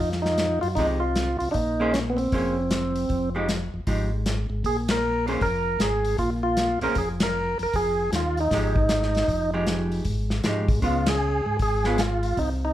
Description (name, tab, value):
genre	soul jazz organ trio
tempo	155 BPM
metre	4/4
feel	swing 64% on 8ths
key	F minor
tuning	A4 = 441 Hz
part	percussive tonewheel organ	melody	0.0-12.7 s	B3 to Bb4	-25 LUFS	right 1 dB	slow rotary speaker
part	tonewheel organ	bass	0.0-12.7 s	F1 to Ab2	-27 LUFS	equal	stopped rotary speaker
part	warm soul drum kit	drums	0.1-12.5 s	hi-hat, kick drum, ride cymbal, snare drum	-28 LUFS	left 1 dB	none
part	vintage hollow-body jazz guitar	accompaniment	0.8-12.0 s	F3 to C5	-28 LUFS	right 1 dB	none
room	light reverb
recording	band playing live in one room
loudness	-22 LUFS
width	side -13 dB against mid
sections	0.0-12.7 A section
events	band accent 4.8, 7.2, 11.0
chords	0.0 Fm9; 1.5 Bbm9; 3.1 Fm9; 4.6 Bb7(no3); 7.7 Fm9; 10.8 Db7